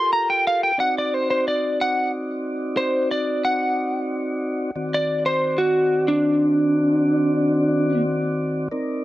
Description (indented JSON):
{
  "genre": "blues",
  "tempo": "60 BPM (dotted quarters)",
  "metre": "12/8",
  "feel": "straight",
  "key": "unclear",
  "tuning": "A4 = 440 Hz",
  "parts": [
    { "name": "lightly driven lead guitar", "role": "melody", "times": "0.0-8.0 s", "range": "D4 to C6", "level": "-20 LUFS", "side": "equal", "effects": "none" },
    { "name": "mellow tonewheel organ", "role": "sustained chords", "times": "0.0-9.0 s", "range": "Eb3 to D5", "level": "-24 LUFS", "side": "left 1 dB", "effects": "slow rotary speaker" }
  ],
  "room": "light reverb",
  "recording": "none",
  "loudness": "-19 LUFS",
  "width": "side -16 dB against mid",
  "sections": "0.0-9.0 A section",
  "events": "lead electric guitar solo 0.0-9.0",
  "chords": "0.0 Gm9; 0.8 D7b9",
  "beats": "| 0.76 1.76 2.75 3.74 | 4.74 5.73 6.72 7.72 | 8.71"
}